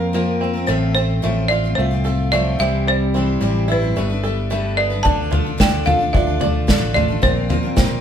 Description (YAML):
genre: indie folk with a building arrangement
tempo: 110 BPM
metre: 4/4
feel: straight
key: unclear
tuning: A4 = 444 Hz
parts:
  - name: folk marimba with hard mallets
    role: melody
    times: 0.0-8.0 s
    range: B4 to A5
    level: -21 LUFS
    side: right 1 dB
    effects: none
  - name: fingerpicked steel-string acoustic guitar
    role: accompaniment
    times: 0.0-8.0 s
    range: F2 to F4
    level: -25 LUFS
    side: left 2 dB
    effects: none
  - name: picked steel-string acoustic guitar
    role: accompaniment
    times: 0.0-8.0 s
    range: A2 to C5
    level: -26 LUFS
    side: left 6 dB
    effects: none
  - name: bluegrass banjo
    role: arpeggios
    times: 0.0-8.0 s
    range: G3 to D5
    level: -25 LUFS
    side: right 3 dB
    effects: none
  - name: fingered electric bass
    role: bass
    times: 0.0-8.0 s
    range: G1 to Bb2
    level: -21 LUFS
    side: equal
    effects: none
  - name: unplugged drum kit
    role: drums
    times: 5.1-7.9 s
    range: kick drum, snare drum, toms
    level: -18 LUFS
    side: equal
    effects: none
room: moderate stone room reverb, RT60 1.0 s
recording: band playing live in one room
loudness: -16 LUFS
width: side -8 dB against mid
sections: 0.0-5.1 A section; 5.1-8.0 B section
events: none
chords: 0.0 Bbsus2; 0.7 F/A; 2.6 C; 4.0 Gadd9; 5.1 Dm; 7.2 Bbsus2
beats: 0.14 | 0.69 1.24 1.78 2.33 | 2.87 3.42 3.96 4.51 | 5.05 5.60 6.14 6.68 | 7.23 7.77